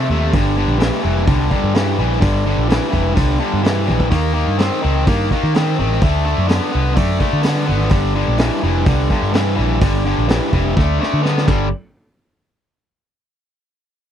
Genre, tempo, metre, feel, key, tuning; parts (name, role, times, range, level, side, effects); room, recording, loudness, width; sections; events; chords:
blues rock power trio and southern rock; 127 BPM; 4/4; straight; G minor; A4 = 440 Hz
overdriven electric guitar; riff; 0.0-11.7 s; G2 to C4; -18 LUFS; left 1 dB
vintage muted picked electric bass; bass; 0.0-11.7 s; F1 to Eb3; -18 LUFS; equal
vintage drum kit; drums; 0.3-11.6 s; crash cymbal, hi-hat, kick drum, snare drum, toms; -19 LUFS; equal
little or no reverb; dry, close 1970s-style studio recording; -14 LUFS; side -9 dB against mid
0.0-11.7 A section; 11.7-13.6 B section
drum fill 3.9, 10.8-11.7
0.3 Gm; 4.1 Eb; 6.0 D; 7.9 Gm7; 10.8 D5; 11.5 G5; 11.7 N.C.